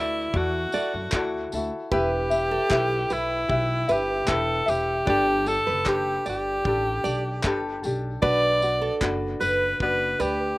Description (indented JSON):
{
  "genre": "acoustic pop",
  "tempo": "76 BPM",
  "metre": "4/4",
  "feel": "straight",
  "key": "G major",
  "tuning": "A4 = 441 Hz",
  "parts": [
    { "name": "edgy alto saxophone", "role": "melody", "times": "0.0-10.6 s", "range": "E4 to D5", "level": "-24 LUFS", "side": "equal", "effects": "none" },
    { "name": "ukulele", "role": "accompaniment", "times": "0.0-10.6 s", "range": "D4 to E5", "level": "-28 LUFS", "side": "left 2 dB", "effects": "slapback echo" },
    { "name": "nylon-string guitar", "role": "arpeggios", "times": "0.0-10.4 s", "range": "A4 to D5", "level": "-30 LUFS", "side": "right 4 dB", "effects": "none" },
    { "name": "upright bass", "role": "bass", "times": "0.0-10.5 s", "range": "E1 to F#2", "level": "-31 LUFS", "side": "equal", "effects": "none" },
    { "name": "modern studio drum kit", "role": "drums", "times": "0.3-10.4 s", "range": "handclaps, kick drum, tambourine", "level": "-29 LUFS", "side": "equal", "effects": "none" }
  ],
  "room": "little or no reverb",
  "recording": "recorded outdoors, with no room sound",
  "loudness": "-22 LUFS",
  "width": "side -20 dB against mid",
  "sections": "0.0-10.6 A section",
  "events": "none",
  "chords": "0.0 Dadd9; 1.9 Em; 5.1 Gadd9; 8.2 Bm",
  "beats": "0.34 1.13 | 1.92 2.71 3.49 4.28 | 5.07 5.86 6.65 7.43 | 8.22 9.01 9.80"
}